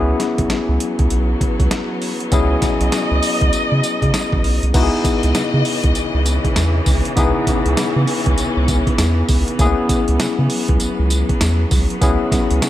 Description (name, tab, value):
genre	R&B, new jack swing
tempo	99 BPM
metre	4/4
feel	swing 62% on 16ths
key	C# minor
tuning	A4 = 437 Hz
part	barky tine electric piano	accompaniment	0.0-12.7 s	A#3 to G#4	-20 LUFS	left 3 dB	medium stereo tremolo
part	warm studio string section	sustained chords	0.0-12.7 s	C#3 to D#5	-23 LUFS	equal	none
part	round analog bass	bass	0.0-12.7 s	A#1 to C#3	-17 LUFS	equal	none
part	boom bap sampler-style drum kit	drums	0.2-12.7 s	crash cymbal, hi-hat, kick drum, snare drum, tambourine	-20 LUFS	right 1 dB	none
room	little or no reverb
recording	none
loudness	-15 LUFS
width	side -13 dB against mid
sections	0.0-4.7 A section; 4.7-12.7 B section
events	none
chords	0.0 F#9sus4; 4.7 C#m9; 9.6 F#9sus4/C#